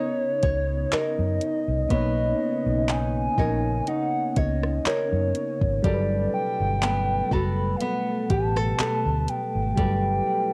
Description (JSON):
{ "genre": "contemporary R&B", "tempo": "61 BPM", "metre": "4/4", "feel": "swing 54% on 16ths", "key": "B major", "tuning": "A4 = 440 Hz", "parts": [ { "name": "hollow clarinet-like synth lead", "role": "melody", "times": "0.0-10.5 s", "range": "C#5 to B5", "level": "-30 LUFS", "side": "equal", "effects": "chorus, cassette tape, analog delay" }, { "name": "mellow FM electric piano", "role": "accompaniment", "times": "0.0-10.5 s", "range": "F#3 to C#5", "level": "-34 LUFS", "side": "equal", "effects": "chorus" }, { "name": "glassy FM pad", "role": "sustained chords", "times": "0.0-10.5 s", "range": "B2 to A4", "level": "-35 LUFS", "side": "equal", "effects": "ensemble chorus, built-in reverb" }, { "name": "nylon-string guitar", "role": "arpeggios", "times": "0.0-10.5 s", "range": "G3 to C#5", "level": "-33 LUFS", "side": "equal", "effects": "plate reverb" }, { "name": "vintage muted fingered electric bass", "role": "bass", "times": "0.4-10.2 s", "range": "F#1 to F#2", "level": "-29 LUFS", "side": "equal", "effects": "none" }, { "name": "smooth R&B drum kit", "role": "drums", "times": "0.4-10.0 s", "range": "handclaps, hi-hat, kick drum, rim click", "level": "-29 LUFS", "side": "equal", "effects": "cassette tape" } ], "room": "light reverb", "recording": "home recording on cassette", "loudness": "-25 LUFS", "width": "mono", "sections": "0.0-10.5 A section", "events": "none", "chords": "0.0 Bmaj9; 5.8 Gmaj9" }